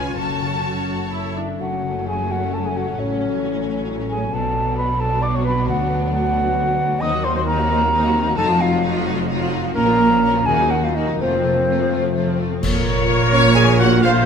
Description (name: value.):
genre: classical, dramatic, fast romantic movement for symphony orchestra.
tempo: 87 BPM (dotted quarters).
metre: 6/8.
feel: rubato.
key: F# minor, Bb minor from 7.0 s.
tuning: A4 = 443 Hz.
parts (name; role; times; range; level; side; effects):
clear symphonic violin section; melody; 0.0-14.3 s; C4 to A5; -31 LUFS; left 4 dB; none.
clear symphonic violin section; second line; 0.0-14.1 s; A3 to Ab5; -29 LUFS; left 2 dB; none.
rich symphonic viola section; accompaniment; 0.0-14.3 s; Eb3 to Db5; -27 LUFS; equal; none.
concert harp; arpeggios; 0.0-14.3 s; F2 to D5; -27 LUFS; left 10 dB; none.
clear symphonic double bass section; bass; 0.0-14.3 s; F1 to Eb2; -24 LUFS; right 5 dB; none.
rich symphonic cello section; bass; 0.0-14.3 s; D2 to C#3; -24 LUFS; right 3 dB; none.
mellow hollow silver concert flute; second line; 1.4-14.3 s; C5 to Eb6; -22 LUFS; equal; none.
warm clarinet; second line; 1.4-14.3 s; C4 to Eb5; -27 LUFS; left 2 dB; none.
mellow French horn section; sustained chords; 1.6-14.3 s; F#3 to Gb4; -29 LUFS; left 6 dB; none.
clear trumpet section; stabs; 12.6-14.3 s; Bb4 to C5; -24 LUFS; left 2 dB; none.
clash cymbals and concert bass drum; percussion; 12.6-13.5 s; none; -26 LUFS; equal; none.
warm cor anglais; second line; 13.3-14.2 s; Db5 to Ab5; -22 LUFS; right 4 dB; none.
room: moderate scoring stage reverb, RT60 2.1 s.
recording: none.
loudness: -16 LUFS.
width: side -7 dB against mid.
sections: 0.0-1.6 A section; 1.6-12.6 A section; 12.6-14.3 B section.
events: band accent 12.6-13.1.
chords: 0.2 F#m; 3.0 F#m/A; 4.3 Bm7; 5.7 Bm/D; 7.0 Cm7b5/Eb; 8.4 F5; 9.8 Bbm; 10.5 Ebm; 11.2 F; 12.6 Bbm.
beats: | 0.17 0.88 | 1.59 2.30 | 2.98 3.66 | 4.33 5.00 | 5.67 6.34 | 7.02 7.70 | 8.38 9.07 | 9.75 10.46 | 11.19 11.91 | 12.62 13.32 | 14.02.